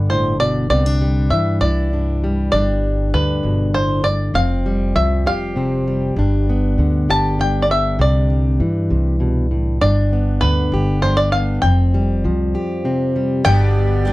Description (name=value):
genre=folk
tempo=66 BPM (dotted quarters)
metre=6/8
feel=straight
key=G mixolydian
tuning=A4 = 443 Hz
part: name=bluegrass banjo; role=melody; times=0.0-14.1 s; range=B4 to A5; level=-20 LUFS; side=equal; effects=none
part: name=fingerpicked plugged-in steel-string acoustic guitar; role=accompaniment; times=0.0-14.1 s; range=F2 to G4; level=-19 LUFS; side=left 1 dB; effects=none
part: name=upright bass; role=bass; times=0.0-14.1 s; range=F1 to G2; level=-19 LUFS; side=equal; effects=none
part: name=picked twelve-string acoustic guitar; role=accompaniment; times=13.4-14.1 s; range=G2 to G4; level=-20 LUFS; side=left 2 dB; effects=none
part: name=pedal harmonium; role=sustained chords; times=13.5-14.1 s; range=B2 to G4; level=-25 LUFS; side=right 3 dB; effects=none
room=little or no reverb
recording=dry, close 1970s-style studio recording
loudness=-15 LUFS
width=side -18 dB against mid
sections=0.0-13.5 A section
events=break 12.5-13.5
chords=0.0 G; 0.7 Cadd9; 2.5 G; 4.3 Fsus2; 6.2 G; 8.0 Cadd9; 9.8 G; 11.6 Fsus2; 13.5 G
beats=| 0.70 1.61 | 2.52 3.44 | 4.35 5.26 | 6.17 7.08 | 7.99 8.90 | 9.81 10.72 | 11.63 12.54 | 13.45